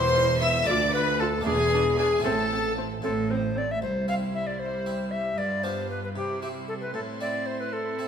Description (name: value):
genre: classical, baroque-style concerto movement with solo episodes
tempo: 77 BPM (dotted quarters)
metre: 6/8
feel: straight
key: A minor, C major from 3.8 s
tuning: A4 = 440 Hz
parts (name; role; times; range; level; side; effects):
- bright tenor recorder; melody; 0.0-8.1 s; G4 to F5; -27 LUFS; left 2 dB; none
- rich chamber violin section; melody; 0.0-8.1 s; G#5 to E6; -33 LUFS; left 3 dB; none
- rich studio violin section; second line; 0.0-8.1 s; E4 to E5; -34 LUFS; left 2 dB; none
- harpsichord; accompaniment; 0.0-8.1 s; C2 to A4; -35 LUFS; equal; none
- rich chamber cello section; bass; 0.0-8.1 s; C2 to C3; -32 LUFS; right 4 dB; none
- rich chamber double bass section; bass; 0.0-3.7 s; E1 to D2; -32 LUFS; right 4 dB; none
- warm chamber viola section; accompaniment; 0.2-8.1 s; G3 to F4; -36 LUFS; right 1 dB; none
room: wet recital hall reverb, RT60 1.5 s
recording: minimal, uncompressed stereo recording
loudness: -24 LUFS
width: side -8 dB against mid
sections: 0.0-3.8 A section; 3.8-8.1 B section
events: none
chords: 0.0 C/E; 0.7 Dm; 1.5 E7; 2.2 Am; 3.8 C; 5.4 G7; 6.2 C; 6.9 Am